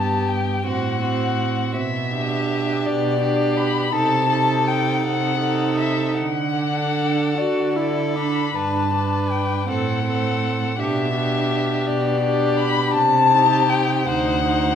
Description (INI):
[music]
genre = classical, slow romantic movement for string quartet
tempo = 50-57 BPM (dotted quarters)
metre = 6/8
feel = rubato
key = G major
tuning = A4 = 442 Hz
[part]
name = muted violin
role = melody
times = 0.0-14.8 s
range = D5 to B5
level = -22 LUFS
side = left 6 dB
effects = none
[part]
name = muted violin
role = second line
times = 0.0-14.8 s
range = F#4 to C5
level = -26 LUFS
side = left 2 dB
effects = none
[part]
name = muted viola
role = accompaniment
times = 0.0-14.8 s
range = B3 to F#4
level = -25 LUFS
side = right 3 dB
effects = none
[part]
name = muted cello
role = bass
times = 0.0-14.8 s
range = D2 to D3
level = -24 LUFS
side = right 4 dB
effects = none
[sound]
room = wet recital hall reverb, RT60 1.6 s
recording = none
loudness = -18 LUFS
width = side -8 dB against mid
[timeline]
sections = 0.0-14.8 A section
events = none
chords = 0.0 G; 0.7 F#dim/A; 1.8 G/B; 3.9 Adim/C; 6.2 D; 8.6 G; 9.7 F#dim/A; 10.8 G/B; 13.0 Am7b5/C; 14.1 D7b9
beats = 0.65 | 1.77 2.86 | 3.93 5.03 | 6.16 7.37 | 8.55 9.69 | 10.79 11.88 | 12.96 14.09